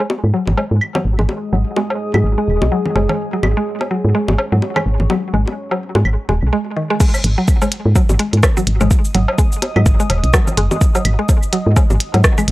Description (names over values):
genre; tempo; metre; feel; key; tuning
minimal techno; 126 BPM; 4/4; swing 58% on 16ths; unclear; A4 = 440 Hz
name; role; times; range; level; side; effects
mallet-like synth pluck; riff; 0.0-12.4 s; D#3 to G#3; -21 LUFS; equal; chorus, phaser, sidechain pumping, tape echo
woodblock, bongos, congas and claves; percussion; 0.0-12.5 s; none; -21 LUFS; left 1 dB; small room reverb, analog delay
deep dark ambient pad; texture; 1.1-12.5 s; G#3 to F#6; -25 LUFS; equal; chorus, built-in reverb, sidechain pumping
woody FM bass; bass; 0.2-12.5 s; D#1 to G#2; -15 LUFS; equal; tube saturation, sidechain pumping
electronic kick drum; drums; 7.0-12.4 s; none; -13 LUFS; equal; overdrive, small room reverb
minimal click drum kit; drums; 7.0-12.5 s; cabasa, crash cymbal, hi-hat, rim click; -20 LUFS; equal; overdrive, low-pass filter on perc, small room reverb, low-pass filter on hats, low-pass filter on snare, low-pass filter on cymbals
room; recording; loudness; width
light reverb; dry, gritty hardware recording; -13 LUFS; side -18 dB against mid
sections
0.0-7.0 A section; 7.0-12.5 B section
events
filter sweep on synth arpeggio sound 0.0-7.0; drop 7.0-12.5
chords
0.0 G#5